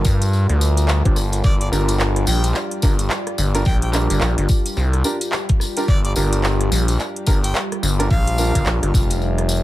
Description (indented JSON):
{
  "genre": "glitch hop",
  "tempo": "108 BPM",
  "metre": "4/4",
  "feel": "swing 60% on 16ths",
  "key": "G minor",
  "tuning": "A4 = 438 Hz",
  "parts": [
    { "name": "dark analog pad", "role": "sustained chords", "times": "0.0-9.6 s", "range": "G3 to Bb4", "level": "-28 LUFS", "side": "equal", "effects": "chorus, phaser, sidechain pumping" },
    { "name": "warm baby grand piano", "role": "stabs", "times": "0.0-9.5 s", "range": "D4 to C5", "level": "-26 LUFS", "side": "right 2 dB", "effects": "sidechain pumping, tape echo" },
    { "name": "gritty driven synth bass", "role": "bass", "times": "0.0-9.6 s", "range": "F1 to G2", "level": "-18 LUFS", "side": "equal", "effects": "none" },
    { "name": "tambourine", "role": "percussion", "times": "0.0-9.6 s", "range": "none", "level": "-29 LUFS", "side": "left 2 dB", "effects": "none" },
    { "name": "electronic kick drum", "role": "drums", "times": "0.1-9.1 s", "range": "none", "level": "-17 LUFS", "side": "equal", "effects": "none" },
    { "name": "drum and bass drum kit", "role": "drums", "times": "0.2-9.5 s", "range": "handclaps, hi-hat, rim click", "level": "-24 LUFS", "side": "equal", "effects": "none" },
    { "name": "clear harmonica", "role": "melody", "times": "1.4-8.7 s", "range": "D5 to G5", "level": "-31 LUFS", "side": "equal", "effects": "tape echo" }
  ],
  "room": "little or no reverb",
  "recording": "none",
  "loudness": "-16 LUFS",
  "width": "side -15 dB against mid",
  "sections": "0.0-9.6 A section",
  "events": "none",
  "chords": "0.0 Gm7"
}